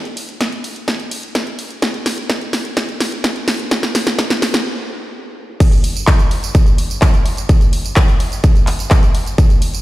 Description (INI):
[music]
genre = EDM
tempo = 127 BPM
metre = 4/4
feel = straight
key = none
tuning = none
[part]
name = big-room dance drum kit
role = drums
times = 0.1-9.8 s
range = crash cymbal, handclaps, hi-hat, snare drum, tambourine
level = -19 LUFS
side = equal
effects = none
[part]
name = electronic kick drum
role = drums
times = 0.4-9.5 s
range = none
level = -12 LUFS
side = equal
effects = high-pass filter on kick
[sound]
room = light reverb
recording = played on a big sound system in a bare room, stone room reverb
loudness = -13 LUFS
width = side -17 dB against mid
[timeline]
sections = 0.0-5.6 A section; 5.6-9.8 B section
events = build-up 0.0-5.6; drum fill 0.0-4.7; stop 4.7-5.6; drop 5.6-9.8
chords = none